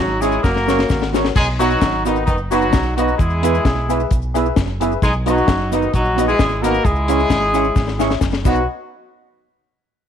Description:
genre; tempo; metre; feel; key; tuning
ska; 131 BPM; 4/4; swing 53% on 8ths; B major; A4 = 440 Hz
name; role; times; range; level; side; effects
mellow horn section; melody; 0.0-8.7 s; D#3 to A#4; -19 LUFS; equal; none
deep dub fingered electric bass; bass; 0.0-8.7 s; F#1 to E2; -22 LUFS; right 1 dB; tube saturation
hollow-body jazz guitar; accompaniment; 0.2-8.6 s; B3 to C#5; -23 LUFS; right 14 dB; none
dark upright piano; stabs; 0.2-8.6 s; E4 to E5; -24 LUFS; left 10 dB; none
deep reggae drum kit; drums; 0.2-8.6 s; crash cymbal, hi-hat, kick drum, snare drum; -19 LUFS; left 2 dB; slapback echo
cabasa; percussion; 0.2-8.7 s; none; -40 LUFS; left 12 dB; slapback echo
room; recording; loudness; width
light reverb; 1960s-style stereo with parts hard left and right; -15 LUFS; side -8 dB against mid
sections
0.0-1.4 A section; 1.4-8.7 B section; 8.7-10.1 C section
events
drum fill 0.4-1.4, 7.8-8.7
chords
0.4 F#; 1.4 B; 3.2 E; 5.0 B; 6.8 C#m; 8.4 B; 8.7 N.C.

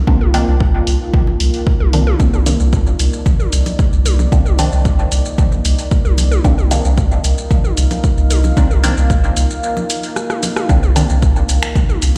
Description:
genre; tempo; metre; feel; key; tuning
dub techno; 113 BPM; 4/4; straight; C minor; A4 = 440 Hz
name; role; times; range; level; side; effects
deep dark ambient pad; sustained chords; 0.0-12.2 s; Bb3 to F5; -27 LUFS; equal; chorus, built-in reverb, sidechain pumping
soft dub sub bass; bass; 0.0-12.1 s; Bb1 to C2; -17 LUFS; equal; sidechain pumping
filtered dub chord stab; stabs; 0.1-11.1 s; Eb3 to D4; -24 LUFS; equal; phaser, sidechain pumping, dub echo
electronic kick drum; drums; 0.1-11.9 s; none; -16 LUFS; equal; overdrive
electronic toms and congas; percussion; 0.2-12.2 s; none; -29 LUFS; equal; overdrive, sidechain pumping on toms, sidechain pumping on perc, dub echo
punchy analog drum machine; drums; 0.3-12.2 s; finger snaps, hi-hat, rim click, shaker; -26 LUFS; equal; none
room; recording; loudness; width
light reverb; played on a big sound system in a bare room, stone room reverb; -14 LUFS; mono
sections
0.0-12.2 A section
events
break 9.6-10.7; drum fill 10.2-10.7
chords
0.0 Cm9

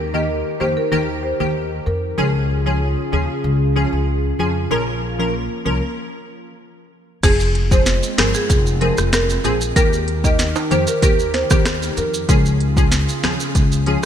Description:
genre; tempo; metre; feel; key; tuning
dancehall; 95 BPM; 4/4; straight; F minor; A4 = 440 Hz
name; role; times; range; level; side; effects
wavetable chord stab; accompaniment; 0.0-14.0 s; Eb3 to Bb4; -23 LUFS; left 1 dB; ensemble chorus
hollow soft pad; sustained chords; 0.0-14.1 s; Db3 to Bb4; -26 LUFS; equal; chorus, sidechain pumping
upright bass; bass; 0.0-14.1 s; F1 to F2; -21 LUFS; equal; none
marimba with medium mallets; melody; 0.1-2.0, 7.2-12.1 s; Ab4 to Eb5; -22 LUFS; right 1 dB; digital delay
afro-pop drum kit; drums; 7.2-14.1 s; crash cymbal, hi-hat, kick drum, rim click, snare drum; -18 LUFS; equal; vintage 12-bit sampler grit, gated reverb
maracas and timbales; percussion; 7.2-14.1 s; none; -28 LUFS; right 6 dB; none
room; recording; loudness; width
light reverb; bright 1980s-style digital production; -16 LUFS; side -9 dB against mid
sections
0.0-7.2 A section; 7.2-14.1 B section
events
stop 6.0-7.2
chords
0.0 Eb; 2.2 Db; 4.7 Bbm; 7.2 Fm; 9.8 Eb; 12.3 Db

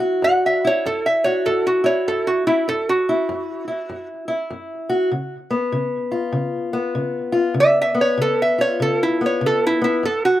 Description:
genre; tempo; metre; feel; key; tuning
acoustic country blues, solo or duo; 98 BPM; 4/4; swing 63% on 8ths; unclear; A4 = 439 Hz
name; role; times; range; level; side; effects
fingerpicked steel-string acoustic guitar; accompaniment; 0.0-10.4 s; F#2 to F#4; -21 LUFS; left 2 dB; slapback echo
lap resonator guitar; melody; 0.2-10.4 s; E4 to F#5; -18 LUFS; right 1 dB; slapback echo
room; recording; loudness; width
light reverb; recorded outdoors, with no room sound; -17 LUFS; side -13 dB against mid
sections
0.0-10.4 A section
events
resonator guitar played with a steel bar solo 0.0-10.4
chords
0.0 F#7(no3); 5.1 C#7

